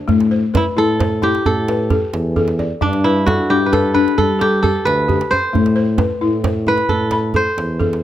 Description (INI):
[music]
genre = west african traditional, West African string and xylophone music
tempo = 88 BPM (dotted quarters)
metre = 12/8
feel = straight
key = unclear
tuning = A4 = 438 Hz
[part]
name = kora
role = melody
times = 0.0-8.0 s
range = D4 to C5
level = -18 LUFS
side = right 2 dB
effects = none
[part]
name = balafon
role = arpeggios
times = 0.0-8.0 s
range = G3 to B5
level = -19 LUFS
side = left 5 dB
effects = none
[part]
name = warm tuba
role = bass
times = 0.1-8.0 s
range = D2 to G3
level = -21 LUFS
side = right 1 dB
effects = none
[part]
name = djembe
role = percussion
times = 0.1-8.0 s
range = none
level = -21 LUFS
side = right 3 dB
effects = none
[sound]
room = light reverb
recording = close, detailed microphones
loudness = -14 LUFS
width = side -12 dB against mid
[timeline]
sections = 0.0-8.0 A section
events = kora solo 0.0-8.0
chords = 0.1 Am; 2.8 G; 5.5 Am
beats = | 0.09 0.77 1.45 2.13 | 2.82 3.50 4.18 4.86 | 5.54 6.22 6.90 7.58